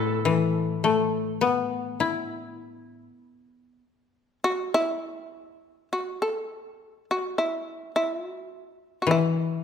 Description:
japanese traditional, Japanese chamber music; 51 BPM; 4/4; rubato; A4 = 439 Hz
shamisen; melody; 0.0-9.6 s; E4 to A4; -27 LUFS; equal
koto; second line; 0.0-4.4 s; A4 to B4; -33 LUFS; right 1 dB
koto; accompaniment; 0.0-9.6 s; A2 to E4; -23 LUFS; left 5 dB
moderate concert hall reverb, RT60 1.8 s; minimal, uncompressed stereo recording; -24 LUFS; side -7 dB against mid
0.0-5.0 A section; 5.0-9.6 B section
| 0.27 1.42 2.60 3.81 | 5.03 6.21 7.37 8.52

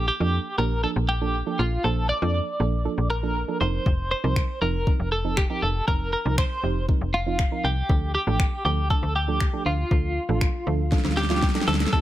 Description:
dance-pop; 119 BPM; 4/4; straight; A4 = 440 Hz
twelve-string electric guitar; melody; 0.0-12.0 s; F4 to D5; -27 LUFS; equal; tremolo, digital delay
soft round pluck; accompaniment; 0.0-12.0 s; Eb3 to C5; -31 LUFS; right 8 dB; chorus, sidechain pumping
slap-like FM bass; bass; 0.0-11.9 s; F1 to F2; -25 LUFS; left 1 dB; sidechain pumping
smooth R&B drum kit; drums; 3.9-12.0 s; finger snaps, kick drum, snare drum; -23 LUFS; equal
warm brass ensemble; sustained chords; 11.9-12.0 s; G3 to Eb4; -35 LUFS; left 2 dB; sidechain pumping
digital ambience; -21 LUFS; side -13 dB against mid
0.0-11.9 A section
drum fill 10.9-11.9
0.0 Bbmaj7; 3.6 F7sus4; 7.9 Dm
0.33 0.83 1.34 | 1.84 2.35 2.85 3.36 | 3.86 4.37 4.87 5.37 | 5.88 6.38 6.89 7.39 | 7.89 8.40 8.90 9.41 | 9.91 10.41 10.92 11.42 | 11.93

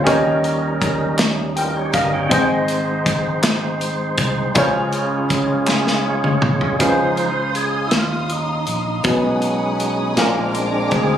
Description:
slow gospel; 54 BPM (dotted quarters); 6/8; straight; Db major; A4 = 439 Hz
warm upright piano; accompaniment; 0.0-11.2 s; Ab2 to G5; -21 LUFS; left 1 dB
percussive tonewheel organ; sustained chords; 0.0-11.2 s; F3 to G5; -21 LUFS; right 2 dB; slow rotary speaker
fingered electric bass; bass; 0.0-11.2 s; G1 to Eb2; -25 LUFS; equal
modern studio drum kit; drums; 0.1-11.1 s; hi-hat, kick drum, snare drum, toms; -21 LUFS; equal
group handclap; percussion; 1.2-6.0 s; -26 LUFS; equal
clear symphonic string section; sustained chords; 6.8-11.2 s; F5 to Eb6; -28 LUFS; left 2 dB
moderate large studio reverb, RT60 0.8 s; recorded on a phone in the room, studio reverb, compression; -16 LUFS; side -9 dB against mid
0.0-6.8 A section; 6.8-11.2 B section
upright piano fill 1.2-2.3; drum fill 5.7-6.8; tonewheel organ fill 5.7-6.8; tonewheel organ solo 6.8-11.2
0.1 Eb7; 2.3 Ab; 4.6 Dbmaj7; 6.8 Dbmaj9; 9.1 Cb6; 10.2 Bb7
| 0.07 1.20 | 2.32 3.44 | 4.56 5.68 | 6.81 7.93 | 9.05 10.17

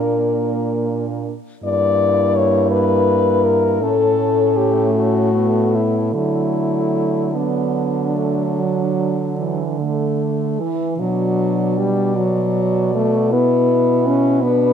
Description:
classical, lyrical piece for horn quartet; 48-56 BPM (dotted quarters); 12/8; rubato; D major, B minor from 11.0 s; A4 = 440 Hz
warm French horn; melody; 0.0-14.7 s; D4 to D5; -20 LUFS; left 7 dB
warm French horn; second line; 0.0-14.7 s; D3 to F#4; -23 LUFS; right 11 dB
mellow French horn; accompaniment; 0.0-14.7 s; E3 to C#4; -20 LUFS; left 1 dB
warm French horn; bass; 0.0-14.7 s; G2 to D3; -22 LUFS; right 2 dB
light reverb; close, detailed microphones; -15 LUFS; side -8 dB against mid
0.0-11.0 A section; 11.0-14.7 B section
0.0 Bb; 1.6 Em7b5/G; 3.8 A; 6.1 D; 11.0 Bm
0.56 | 1.64 2.72 3.81 4.95 | 6.13 7.35 8.58 9.78 | 10.99 12.17 13.32 14.42

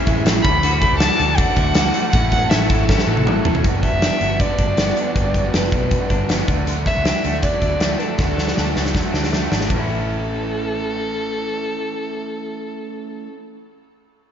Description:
jangly indie pop; 158 BPM; 4/4; straight; A major; A4 = 440 Hz
dark violin; melody; 0.0-13.3 s; A4 to B5; -23 LUFS; equal
raw garage guitar; accompaniment; 0.0-13.4 s; A2 to A4; -26 LUFS; right 5 dB; overdrive, slapback echo
rich studio string section; sustained chords; 0.0-3.6 s; E4 to D6; -31 LUFS; right 1 dB
electric guitar through a small old amp; arpeggios; 0.0-13.4 s; G2 to F#4; -26 LUFS; left 4 dB; slapback echo
vintage muted fingered electric bass; bass; 0.1-13.3 s; E1 to D2; -23 LUFS; equal
big rock drum kit; drums; 0.1-9.8 s; hi-hat, kick drum, ride cymbal, snare drum, toms; -19 LUFS; equal
moderate scoring stage reverb, RT60 1.6 s, small room reverb; big arena sound, nothing above 7.5 kHz; -16 LUFS; side -8 dB against mid
0.0-3.6 A section; 3.6-9.7 B section; 9.7-12.7 C section
drum fill 2.9-3.6, 8.2-9.7
0.4 D; 2.1 A6; 3.6 Gmaj7; 6.5 D; 9.7 A
0.26 | 0.64 1.01 1.39 1.76 | 2.14 2.52 2.89 3.27 | 3.65 4.02 4.40 4.78 | 5.16 5.54 5.91 6.29 | 6.67 7.05 7.43 7.81 | 8.19 8.57 8.95 9.32 | 9.70 10.08 10.46 10.84 | 11.22 11.60 11.98 12.36

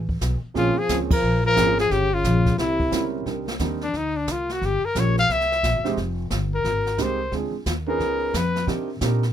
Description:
jazz, small-group swing and bop; 177 BPM; 4/4; swing 64% on 8ths; C minor from 3.3 s; A4 = 440 Hz
upright bass; bass; 0.0-9.3 s; E1 to C3; -25 LUFS; equal
jazz brush drum kit; drums; 0.1-9.3 s; brushed snare drum, crash cymbal, hi-hat, kick drum, snare drum; -28 LUFS; right 1 dB
warm grand piano; accompaniment; 0.5-9.2 s; F3 to C5; -27 LUFS; right 6 dB
breathy trumpet; melody; 0.6-8.7 s; D4 to F5; -22 LUFS; left 2 dB
breathy trombone; second line; 0.6-3.1 s; C3 to F3; -29 LUFS; right 3 dB
light reverb; minimal, uncompressed stereo recording; -20 LUFS; side -10 dB against mid
0.0-3.3 A section; 3.3-9.3 B section
band accent 1.1; trumpet solo 3.3-9.3
0.0 Asus2; 0.6 Bbm9; 1.9 Gm7b5; 2.6 C7b9; 3.3 Cm9; 4.6 Gm7b5; 5.3 C7alt; 6.0 Fm11; 7.3 Dm7b5; 8.0 Db9; 8.7 Cm9
0.21 | 0.55 0.89 1.23 1.57 | 1.91 2.24 2.58 2.92 | 3.26 3.60 3.94 4.28 | 4.61 4.95 5.29 5.63 | 5.97 6.31 6.64 6.98 | 7.32 7.66 8.00 8.34 | 8.67 9.01

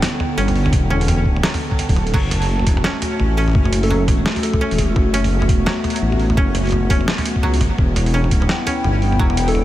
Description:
half-time drum and bass; 170 BPM; 4/4; swing 60% on 16ths, half-time; F# phrygian; A4 = 440 Hz
dark analog pad; sustained chords; 0.0-9.6 s; D3 to G5; -22 LUFS; left 1 dB; chorus, sidechain pumping
koto; arpeggios; 0.0-9.6 s; F#3 to C#4; -26 LUFS; right 1 dB; diffuse ambient delay
boom bap sampler-style drum kit; drums; 0.0-9.6 s; crash cymbal, hi-hat, snare drum, toms; -23 LUFS; equal; studio reverb
backwards swelling texture; texture; 0.0-2.1 s; A4; -34 LUFS; right 6 dB; built-in reverb, wide subtle chorus
dark detuned saw bass; bass; 0.4-9.6 s; D1 to C#2; -18 LUFS; equal
electronic kick drum; drums; 0.7-9.3 s; -18 LUFS; equal; studio reverb
soft struck synth lead; melody; 3.8-4.9, 9.5-9.6 s; A4; -29 LUFS; equal; chorus, tremolo, vintage 12-bit sampler grit, tape echo
light reverb; -15 LUFS; side -14 dB against mid
0.0-2.1 A section; 2.1-9.6 A section
drop 0.0-2.1, 2.1-9.6
0.0 Em; 2.1 F#m; 7.8 Em
0.02 0.37 | 0.73 1.08 1.43 1.78 | 2.14 2.49 2.84 3.20 | 3.55 3.90 4.25 4.61 | 4.96 5.31 5.67 6.02 | 6.37 6.73 7.08 7.43 | 7.78 8.14 8.49 8.84 | 9.20 9.55

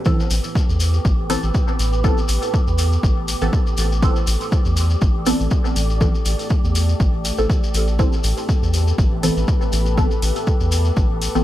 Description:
dub techno; 121 BPM; 4/4; swing 55% on 16ths; A minor; A4 = 440 Hz
deep dark ambient pad; sustained chords; 0.0-11.4 s; A3 to D5; -29 LUFS; right 1 dB; chorus, built-in reverb, sidechain pumping
wind-like tuned noise texture; texture; 0.0-11.4 s; G4; -33 LUFS; left 3 dB; built-in reverb, sidechain pumping
filtered dub chord stab; stabs; 0.1-11.4 s; E3 to A4; -24 LUFS; equal; phaser, sidechain pumping, dub echo
electronic kick drum; drums; 0.1-11.1 s; -19 LUFS; equal; overdrive
shekere; percussion; 0.1-11.4 s; -30 LUFS; left 4 dB
round analog bass; bass; 0.3-11.4 s; A1 to E2; -19 LUFS; equal; sidechain pumping
electronic hi-hat; drums; 0.3-11.3 s; -30 LUFS; right 1 dB; overdrive
digital ambience; -16 LUFS; side -14 dB against mid
0.1-11.4 A section
filter sweep on synth stab 0.1-11.4
0.1 Amadd9
| 0.06 0.55 1.05 1.55 | 2.04 2.54 3.03 3.53 | 4.03 4.52 5.02 5.51 | 6.01 6.50 7.00 7.50 | 7.99 8.49 8.98 9.48 | 9.98 10.47 10.97

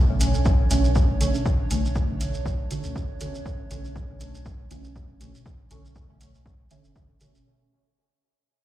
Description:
dub techno; 120 BPM; 4/4; swing 55% on 16ths; A4 = 440 Hz
warbly tape-like pad; sustained chords; 0.0-7.4 s; A3 to C#5; -36 LUFS; right 2 dB; chorus, built-in reverb, phaser, sidechain pumping
warm sub bass; bass; 0.0-7.4 s; F#1 to D2; -27 LUFS; equal; sidechain pumping
deep mellow chord stab; stabs; 0.1-7.4 s; B2 to C#4; -30 LUFS; right 1 dB; chorus, phaser, sidechain pumping, dub echo
electronic hi-hat; drums; 0.2-7.3 s; -36 LUFS; equal; overdrive
shekere; percussion; 0.2-7.4 s; -37 LUFS; right 2 dB
electronic kick drum; drums; 0.5-7.1 s; -24 LUFS; equal
light reverb; played on a big sound system in a bare room, large studio reverb; -21 LUFS; side -14 dB against mid
0.0-7.5 A section
fade-out 0.0-7.5; filter sweep on sub bass 0.0-7.5
0.0 Bm9
0.46 0.96 | 1.46 1.96 2.46 2.96 | 3.46 3.96 4.46 4.96 | 5.46 5.96 6.46 6.96

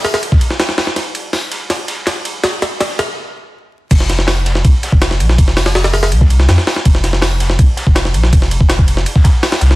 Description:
drum and bass, jungle; 163 BPM; 4/4; straight; A4 = 441 Hz
soft dub sub bass; bass; 0.0-9.8 s; F1 to F2; -13 LUFS; equal; high-pass filter
crunchy breakbeat drum kit; drums; 0.0-9.7 s; hi-hat, shaker, snare drum; -30 LUFS; left 3 dB
jungle sampler-style drum kit; drums; 0.0-9.8 s; crash cymbal, hi-hat, kick drum, ride cymbal, snare drum; -12 LUFS; equal
small room ambience; dense, heavily limited modern master, vinyl crackle; -11 LUFS; side -19 dB against mid
0.0-3.9 A section; 3.9-9.8 B section
build-up 0.0-3.9; drum fill 1.0-3.2; stop 3.2-3.9; drop 3.9-9.8
0.23 0.59 | 0.96 1.33 1.70 2.07 | 2.44 2.80 3.17 3.54 | 3.91 4.28 4.64 5.01 | 5.38 5.75 6.12 6.49 | 6.85 7.22 7.59 7.96 | 8.32 8.69 9.06 9.43

